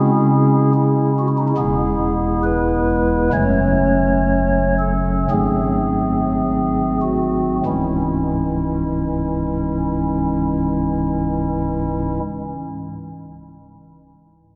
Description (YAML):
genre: classical, chorale-style piece for pipe organ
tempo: 48-75 BPM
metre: 4/4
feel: rubato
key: C# minor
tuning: A4 = 436 Hz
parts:
  - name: pipe organ, stopped flute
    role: solo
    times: 0.0-12.2 s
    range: C#1 to C#5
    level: -19 LUFS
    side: equal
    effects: none
room: wet church reverb, RT60 3.8 s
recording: none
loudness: -19 LUFS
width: mono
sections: 0.0-7.6 A section; 7.6-12.7 B section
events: slowing down 0.0-7.6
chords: 0.0 C#m; 1.6 E; 3.3 F#m; 5.3 G#7b9; 7.6 C#m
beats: 0.74 1.57 2.43 | 3.33 4.28 5.30 6.41 | 7.65 8.90 10.15 11.41